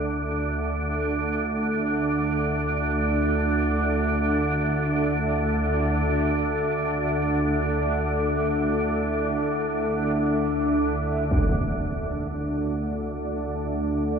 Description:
dark ambient drone; free time; A4 = 440 Hz
deep dark ambient pad; sustained chords; 0.0-14.2 s; D4 to E5; -28 LUFS; equal; chorus, built-in reverb
organ-like drone; drone; 0.0-14.2 s; D2 to D3; -24 LUFS; right 1 dB; ensemble chorus, built-in reverb
quartz singing bowl; texture; 0.0-11.3 s; barely audible
impact; percussion; 11.3-11.5 s; -27 LUFS; equal; low-pass filter on sfx
wet huge ambient reverb, RT60 8.4 s; small room ambience; -22 LUFS; side -6 dB against mid
0.0-11.3 A section; 11.3-14.2 A section
0.0 D5

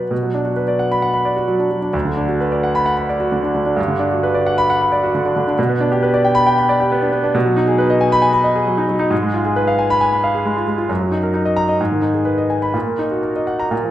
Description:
classical, virtuoso piano study; 133 BPM; 4/4; rubato; B minor, Eb minor from 7.3 s; A4 = 439 Hz
clear concert grand piano; solo; 0.0-13.9 s; D2 to B5; -15 LUFS; equal
moderate recital hall reverb, RT60 1.6 s; minimal, uncompressed stereo recording; -15 LUFS; side -13 dB against mid
0.1-13.9 A section
0.1 Bm; 1.9 Bm/D; 3.8 Gmaj7; 5.6 G/B; 7.3 B6; 9.1 Fdim/Ab; 10.9 Ebm/Gb; 11.8 Abm; 12.7 Ebm/Bb

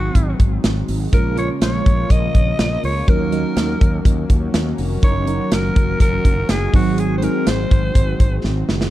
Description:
1980s-style pop; 123 BPM; 4/4; straight; A4 = 440 Hz
raspy alto saxophone; melody; 0.0-8.5 s; Gb4 to Eb5; -25 LUFS; left 1 dB; ping-pong delay, plate reverb
FM electric piano with soft pad layer; accompaniment; 0.0-8.9 s; Gb3 to Db5; -24 LUFS; right 1 dB; chorus, phaser
brassy analog pad; sustained chords; 0.0-8.9 s; Db3 to Gb4; -27 LUFS; equal; chorus
fretless electric bass; bass; 0.0-8.9 s; F1 to Eb2; -22 LUFS; equal
modern studio drum kit; drums; 0.1-8.9 s; hi-hat, kick drum, snare drum; -17 LUFS; equal
little or no reverb; dark, warm production; -15 LUFS; side -15 dB against mid
0.0-8.9 A section
drum fill 8.4-8.9
0.0 Ab7; 1.1 Bbm7; 3.1 Ebm7; 5.0 Gb6; 6.7 Ab7

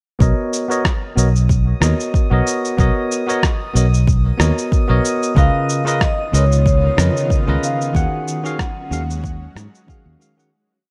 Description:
sunset chillout; 93 BPM; 4/4; swing 55% on 16ths; B lydian; A4 = 440 Hz
bell-like tine electric piano; accompaniment; 0.2-10.5 s; C#3 to F#5; -23 LUFS; equal; low-pass filter, delay
fingered electric bass; bass; 0.2-10.1 s; B1 to G#2; -18 LUFS; equal
electronic kick drum; drums; 0.2-10.0 s; -20 LUFS; equal; overdrive
electronic shaker and rim click; drums; 0.2-10.5 s; -26 LUFS; equal
drifting glass-harmonics texture; texture; 1.1-10.5 s; D#6; -35 LUFS; equal; chorus, built-in reverb
vibraphone with soft mallets; melody; 5.4-10.2 s; C#5 to F#5; -25 LUFS; equal; digital delay
shimmering ambient pad; sustained chords; 6.2-10.5 s; D#3 to F#4; -33 LUFS; equal; chorus, built-in reverb
light reverb; dark, warm production; -17 LUFS; mono
0.2-10.5 groove
filter sweep on tine electric piano 0.2-10.5; fade-out 7.1-10.5
0.2 Bmaj9; 5.4 C#13; 7.9 D#m11

